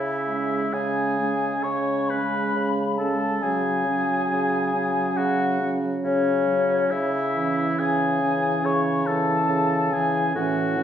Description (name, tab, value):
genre	classical, slow romantic movement for wind quintet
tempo	65-73 BPM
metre	4/4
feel	rubato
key	C# minor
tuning	A4 = 439 Hz
part	mellow hollow silver concert flute	melody	0.0-10.8 s	C#5 to C#6	-26 LUFS	left 4 dB	none
part	warm oboe	second line	0.0-10.8 s	C#4 to C#5	-28 LUFS	equal	none
part	mellow bassoon	bass	0.0-10.8 s	A2 to C#3	-27 LUFS	right 1 dB	none
part	mellow clarinet	accompaniment	0.3-10.8 s	C#4	-29 LUFS	right 4 dB	none
part	warm French horn	accompaniment	0.3-10.8 s	E3 to G#3	-30 LUFS	right 1 dB	none
room	wet recital hall reverb, RT60 1.3 s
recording	heard from further back in the room, nothing above 10.7 kHz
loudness	-21 LUFS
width	side -9 dB against mid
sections	0.0-10.8 A section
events	none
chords	0.0 C#m; 3.4 F#5/C#; 6.9 C#m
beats	0.72 1.64 2.55 | 3.43 4.32 5.18 6.04 | 6.91 7.79 8.65 9.49 | 10.35